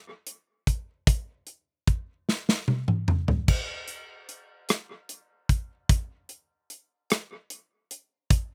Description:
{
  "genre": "pop",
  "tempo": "50 BPM (dotted quarters)",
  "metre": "6/8",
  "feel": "straight",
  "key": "none",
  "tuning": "none",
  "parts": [
    { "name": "modern studio drum kit", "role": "drums", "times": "0.3-8.5 s", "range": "crash cymbal, hi-hat, kick drum, rim click, snare drum, toms", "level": "-26 LUFS", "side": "equal", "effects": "none" }
  ],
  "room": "little or no reverb",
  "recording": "recorded outdoors, with no room sound",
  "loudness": "-28 LUFS",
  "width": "mono",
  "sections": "0.0-3.5 A section; 3.5-8.5 B section",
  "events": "drum fill 2.3-3.5",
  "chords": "none"
}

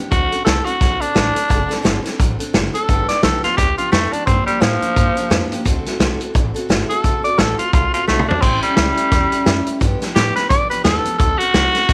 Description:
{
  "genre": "rockabilly",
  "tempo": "173 BPM",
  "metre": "4/4",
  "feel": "swing 59% on 8ths",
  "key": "D mixolydian",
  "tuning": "A4 = 439 Hz",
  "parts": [
    { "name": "picked steel-string acoustic guitar", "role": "accompaniment", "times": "0.0-11.9 s", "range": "G2 to A4", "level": "-28 LUFS", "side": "equal", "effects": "none" },
    { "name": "growling tenor saxophone", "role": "melody", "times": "0.1-11.9 s", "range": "F3 to D5", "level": "-20 LUFS", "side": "equal", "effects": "none" },
    { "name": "upright bass", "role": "bass", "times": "0.1-11.9 s", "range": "F#1 to A2", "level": "-25 LUFS", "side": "equal", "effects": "none" },
    { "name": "vintage drum kit", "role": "drums", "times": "0.1-11.9 s", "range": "crash cymbal, hi-hat, kick drum, snare drum, toms", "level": "-20 LUFS", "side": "equal", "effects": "none" }
  ],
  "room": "small room reverb",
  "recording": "none",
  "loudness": "-17 LUFS",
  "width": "mono",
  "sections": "0.0-11.9 A section",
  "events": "drum fill 8.1-8.4",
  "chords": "0.1 D7; 2.9 G7; 4.3 Gm7; 5.7 D7; 8.4 A7; 9.8 G7; 11.2 D7"
}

